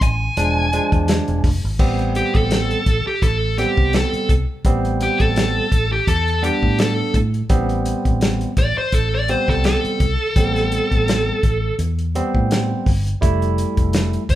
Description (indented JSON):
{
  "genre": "straight-eighth soul blues",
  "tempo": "84 BPM",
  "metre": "4/4",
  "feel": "swing 55% on 16ths",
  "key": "A minor",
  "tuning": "A4 = 440 Hz",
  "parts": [
    { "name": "dark smooth lead guitar", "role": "melody", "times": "0.0-14.4 s", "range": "G4 to G#5", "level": "-21 LUFS", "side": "right 1 dB", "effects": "overdrive" },
    { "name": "fingered electric bass", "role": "bass", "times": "0.0-14.4 s", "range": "E1 to A2", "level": "-21 LUFS", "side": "equal", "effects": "none" },
    { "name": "warm soul drum kit", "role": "drums", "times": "0.0-14.4 s", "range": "crash cymbal, hi-hat, kick drum, snare drum", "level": "-20 LUFS", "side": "equal", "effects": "none" },
    { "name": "barky tine electric piano", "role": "accompaniment", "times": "0.4-14.2 s", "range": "F3 to E4", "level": "-23 LUFS", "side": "right 1 dB", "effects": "overdrive" }
  ],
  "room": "light reverb",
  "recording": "band playing live in one room",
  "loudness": "-16 LUFS",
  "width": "side -14 dB against mid",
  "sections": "0.0-1.8 A section; 1.8-14.4 B section",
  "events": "lead electric guitar solo 0.0-1.8",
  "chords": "0.4 E7b9; 1.8 Am9; 13.2 Fmaj7"
}